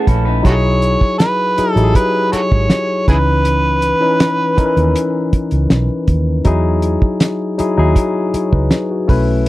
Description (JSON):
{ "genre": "lush 1970s-style soul", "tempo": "80 BPM", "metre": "4/4", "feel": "straight", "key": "E major", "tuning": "A4 = 440 Hz", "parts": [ { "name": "barky tine electric piano", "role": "accompaniment", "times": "0.0-9.5 s", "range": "E3 to B5", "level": "-17 LUFS", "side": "left 2 dB", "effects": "overdrive" }, { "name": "electric guitar through a small old amp", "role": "riff", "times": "0.0-0.6 s", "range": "C#4 to B4", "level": "-22 LUFS", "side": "right 6 dB", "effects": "spring reverb" }, { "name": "vintage muted fingered electric bass", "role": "bass", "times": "0.1-9.5 s", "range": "G#1 to E2", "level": "-15 LUFS", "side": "right 1 dB", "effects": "none" }, { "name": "cloth-damped thuddy drum kit", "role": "drums", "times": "0.1-9.5 s", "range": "hi-hat, kick drum, snare drum", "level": "-14 LUFS", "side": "equal", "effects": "none" }, { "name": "overdriven harmonica", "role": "melody", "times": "0.5-5.3 s", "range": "E4 to C#5", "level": "-16 LUFS", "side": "right 1 dB", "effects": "none" } ], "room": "light reverb", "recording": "dry, close 1970s-style studio recording", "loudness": "-12 LUFS", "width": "side -16 dB against mid", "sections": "0.0-9.5 A section", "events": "tine electric piano fill 0.0-0.5", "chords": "0.5 Emaj9; 3.1 C#m9; 6.5 Emaj9" }